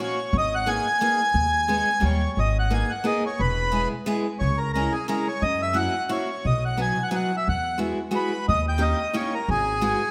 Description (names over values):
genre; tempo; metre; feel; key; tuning
musette waltz; 177 BPM; 3/4; swing 55% on 8ths; G# minor; A4 = 440 Hz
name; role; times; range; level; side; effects
accordion; melody; 0.0-10.1 s; G#4 to G#5; -27 LUFS; equal; none
picked steel-string acoustic guitar; accompaniment; 0.0-10.0 s; F#3 to G#4; -30 LUFS; equal; none
upright bass; bass; 0.3-9.9 s; E1 to F#2; -28 LUFS; equal; none
room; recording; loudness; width
moderate concert hall reverb, RT60 1.8 s; none; -24 LUFS; mono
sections
0.0-10.1 A section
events
none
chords
0.3 G#madd9; 1.4 G#m/D#; 2.0 D#; 2.4 G#madd9; 3.4 E; 4.4 C#m; 5.4 F#7; 6.4 B; 7.5 Eadd9; 8.5 D#7; 9.5 G#m7